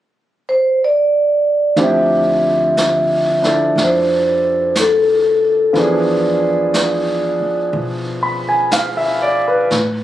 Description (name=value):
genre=jazz ballad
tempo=60 BPM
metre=4/4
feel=swing 66% on 8ths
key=D minor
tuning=A4 = 439 Hz
part: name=vibraphone with soft mallets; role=melody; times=0.5-7.7 s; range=A4 to E5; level=-14 LUFS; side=equal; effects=none
part: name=warm concert grand piano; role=accompaniment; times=1.8-9.8 s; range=F3 to B5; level=-18 LUFS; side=equal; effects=none
part: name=upright bass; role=bass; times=1.8-10.0 s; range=D2 to B2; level=-26 LUFS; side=left 1 dB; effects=none
part: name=vintage brush drum kit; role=drums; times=1.8-10.0 s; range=brushed snare drum, hi-hat, snare drum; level=-24 LUFS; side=right 1 dB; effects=none
room=light reverb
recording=recorded on a phone in the room, studio ambience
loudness=-13 LUFS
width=side -13 dB against mid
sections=0.0-1.8 A section; 1.8-10.0 B section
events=none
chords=0.0 N.C.; 1.8 Dm11; 5.8 E7b9